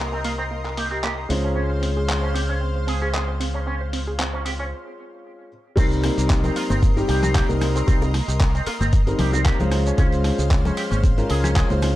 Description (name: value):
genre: nu-disco, nu disco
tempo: 114 BPM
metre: 4/4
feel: swing 54% on 16ths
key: C phrygian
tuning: A4 = 441 Hz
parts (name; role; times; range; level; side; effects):
- warm grand piano; accompaniment; 0.0-12.0 s; G3 to C5; -27 LUFS; left 1 dB; vintage 12-bit sampler grit, sidechain pumping, tape echo
- lush unison pad; sustained chords; 0.0-12.0 s; Bb4 to C6; -33 LUFS; left 1 dB; chorus, sidechain pumping
- analog pluck; arpeggios; 0.0-11.9 s; Bb3 to Db5; -34 LUFS; right 3 dB; chorus, sidechain pumping, tape echo
- fingered electric bass with an envelope filter; bass; 0.0-12.0 s; G1 to Db2; -23 LUFS; equal; none
- electric guitar with an envelope filter; riff; 0.1-11.7 s; C4 to Ab4; -31 LUFS; right 3 dB; analog chorus, low-pass filter, tape echo
- dusty soul sampler-style drum kit; drums; 0.2-11.9 s; crash cymbal, handclaps, hi-hat, rim click, shaker; -30 LUFS; equal; overdrive
- electronic kick drum; drums; 5.8-11.7 s; none; -19 LUFS; equal; overdrive
- bongos, tambourine and congas; percussion; 5.8-11.9 s; none; -31 LUFS; left 2 dB; none
room: digital ambience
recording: dark, warm production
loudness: -19 LUFS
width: side -15 dB against mid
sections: 0.0-5.8 A section; 5.8-12.0 B section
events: break 4.7-5.8; drop 5.8-12.0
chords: 0.0 Cm7; 1.3 Dbmaj7; 5.8 Cm7; 9.7 Dbmaj7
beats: 0.51 1.03 | 1.56 2.09 2.61 3.14 | 3.67 4.19 4.72 5.25 | 5.77 6.30 6.83 7.35 | 7.88 8.40 8.93 9.46 | 9.98 10.51 11.04 11.56